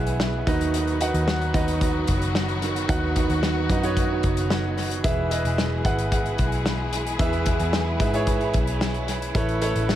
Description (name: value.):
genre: piano-driven pop.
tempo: 112 BPM.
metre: 4/4.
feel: straight.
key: E major.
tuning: A4 = 441 Hz.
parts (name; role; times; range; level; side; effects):
clear upright piano; accompaniment; 0.0-10.0 s; A2 to F#5; -26 LUFS; right 3 dB; dub echo.
warm studio string section; sustained chords; 0.0-10.0 s; B2 to G#4; -31 LUFS; left 2 dB; none.
vintage muted picked electric bass; bass; 0.0-10.0 s; E1 to G#2; -26 LUFS; equal; none.
loose indie drum kit; drums; 0.1-10.0 s; hi-hat, kick drum, snare drum; -26 LUFS; left 1 dB; dub echo.
room: light reverb, small room ambience.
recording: echo-heavy mix.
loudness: -21 LUFS.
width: side -12 dB against mid.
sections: 0.0-10.0 A section.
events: none.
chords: 0.5 B; 5.0 E; 9.4 Aadd9.